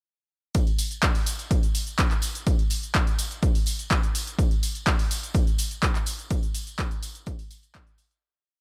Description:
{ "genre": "house", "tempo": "125 BPM", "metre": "4/4", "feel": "straight", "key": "none", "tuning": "none", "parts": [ { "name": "electronic kick drum", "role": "drums", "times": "0.5-7.8 s", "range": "none", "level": "-26 LUFS", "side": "equal", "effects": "none" }, { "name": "punchy analog drum machine", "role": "drums", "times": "0.5-8.2 s", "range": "handclaps, hi-hat, shaker", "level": "-32 LUFS", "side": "equal", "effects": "sidechain pumping on hats, sidechain pumping on perc" }, { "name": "tambourine", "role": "percussion", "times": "0.6-8.2 s", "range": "none", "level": "-41 LUFS", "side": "equal", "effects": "sidechain pumping on perc" } ], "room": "digital ambience", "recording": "none", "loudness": "-25 LUFS", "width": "mono", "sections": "0.5-8.2 drop", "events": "drop 0.5-8.2; fade-out 5.7-8.2", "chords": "none" }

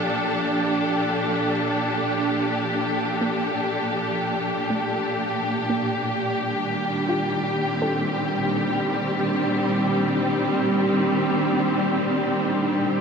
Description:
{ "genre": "ambient", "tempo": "free time", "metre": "none", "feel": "none", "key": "unclear", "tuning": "A4 = 440 Hz", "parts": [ { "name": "warm studio string section", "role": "sustained chords", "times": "0.0-13.0 s", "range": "Bb2 to A4", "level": "-22 LUFS", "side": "equal", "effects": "shimmer reverb" }, { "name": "soft round pluck", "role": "arpeggios", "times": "3.2-11.1 s", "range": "A3 to A4", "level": "-33 LUFS", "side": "right 1 dB", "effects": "none" }, { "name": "analog drone", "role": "drone", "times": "6.4-13.0 s", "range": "G3 to D4", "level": "-27 LUFS", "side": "equal", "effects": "chorus" } ], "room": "wet huge ambient reverb, RT60 8.4 s", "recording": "none", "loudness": "-21 LUFS", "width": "side -6 dB against mid", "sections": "0.0-13.0 A section", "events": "none", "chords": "0.0 Gm9; 5.9 Cm7" }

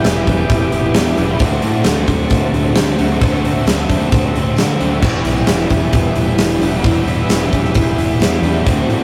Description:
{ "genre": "rock, shoegaze and dream pop", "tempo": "132 BPM", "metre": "4/4", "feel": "straight", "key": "E minor", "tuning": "A4 = 439 Hz", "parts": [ { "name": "ensemble organ-string", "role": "sustained chords", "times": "0.0-9.0 s", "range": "E4 to E6", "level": "-26 LUFS", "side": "equal", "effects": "ensemble chorus" }, { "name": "biting overdriven guitar", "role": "riff", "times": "0.0-9.0 s", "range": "E2 to G4", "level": "-26 LUFS", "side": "equal", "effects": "none" }, { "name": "crunchy overdriven guitar", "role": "riff", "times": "0.0-9.0 s", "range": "D3 to F#4", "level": "-24 LUFS", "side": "equal", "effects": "none" }, { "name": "overdriven semi-hollow guitar", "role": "riff", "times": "0.0-9.0 s", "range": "D3 to F#4", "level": "-28 LUFS", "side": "equal", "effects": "none" }, { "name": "huge arena drum kit", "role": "drums", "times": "0.0-9.0 s", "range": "crash cymbal, hi-hat, kick drum, snare drum", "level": "-18 LUFS", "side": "equal", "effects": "none" }, { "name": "tambourine", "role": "percussion", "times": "0.0-8.3 s", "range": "none", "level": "barely audible", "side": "none", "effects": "none" }, { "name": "growling fingered electric bass", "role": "bass", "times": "0.1-9.0 s", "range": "E1 to D3", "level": "-22 LUFS", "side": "equal", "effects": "overdrive" } ], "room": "moderate small room reverb, RT60 0.5 s", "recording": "rough rehearsal-room recording, warm saturation", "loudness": "-15 LUFS", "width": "mono", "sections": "0.0-9.0 A section", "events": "none", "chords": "0.0 Em7; 1.4 D5; 5.0 Em7" }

